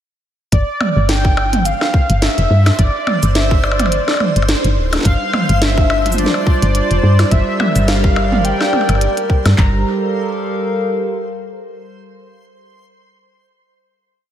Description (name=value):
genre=IDM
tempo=106 BPM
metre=4/4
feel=swing 56% on 16ths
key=G dorian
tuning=A4 = 439 Hz
part: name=warm velvety synth lead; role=melody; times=0.5-9.8 s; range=D5 to Bb5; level=-20 LUFS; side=equal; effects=chorus, diffuse ambient delay
part: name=woody FM bass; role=bass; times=0.5-9.8 s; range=D1 to G2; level=-15 LUFS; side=equal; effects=tube saturation
part: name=glitchy drum kit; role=drums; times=0.5-9.7 s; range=handclaps, kick drum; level=-14 LUFS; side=equal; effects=none
part: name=glitchy drum kit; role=drums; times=0.5-9.6 s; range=hi-hat, percussion blips, shaker, snare drum, toms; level=-18 LUFS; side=equal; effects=diffuse ambient delay
part: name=backwards swelling texture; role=texture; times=1.9-9.6 s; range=C5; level=-29 LUFS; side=right 2 dB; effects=built-in reverb, lush chorus
part: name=hollow soft pad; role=sustained chords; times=5.1-11.8 s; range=G3 to F5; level=-20 LUFS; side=right 1 dB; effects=chorus
room=moderate lush hall reverb, RT60 1.8 s, digital ambience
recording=dreamy mix soaked in reverb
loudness=-12 LUFS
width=side -10 dB against mid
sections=0.5-9.6 chorus; 9.6-11.8 final chord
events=none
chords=0.5 G5; 5.1 Dm7/G; 7.3 C7/G; 9.6 Gm7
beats=| 0.52 1.09 1.66 2.22 | 2.79 3.35 3.92 4.49 | 5.05 5.62 6.18 6.75 | 7.32 7.88 8.45 9.01 | 9.58 10.15 10.71 11.28